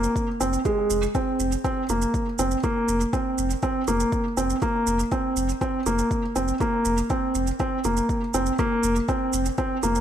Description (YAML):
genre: piano and strings electronica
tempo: 121 BPM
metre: 4/4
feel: straight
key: F minor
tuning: A4 = 439 Hz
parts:
  - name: felt-muted upright piano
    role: riff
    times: 0.0-10.0 s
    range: Ab3 to C4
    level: -23 LUFS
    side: right 1 dB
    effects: tape echo
  - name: warm sub bass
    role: bass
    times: 0.0-10.0 s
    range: F1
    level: -28 LUFS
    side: equal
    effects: tube saturation, sidechain pumping
  - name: shaker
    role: drums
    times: 0.0-10.0 s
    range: none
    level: -34 LUFS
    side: right 9 dB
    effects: overdrive
  - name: electronic kick drum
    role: drums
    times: 0.2-9.7 s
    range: none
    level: -28 LUFS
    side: equal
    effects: overdrive
room: light reverb, digital ambience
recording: none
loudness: -22 LUFS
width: side -10 dB against mid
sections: 0.0-10.0 A section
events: none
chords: 0.0 Fm; 2.6 Fsus4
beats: 0.16 | 0.66 1.15 1.65 2.14 | 2.64 3.13 3.63 4.13 | 4.62 5.12 5.61 6.11 | 6.61 7.10 7.60 8.09 | 8.59 9.08 9.58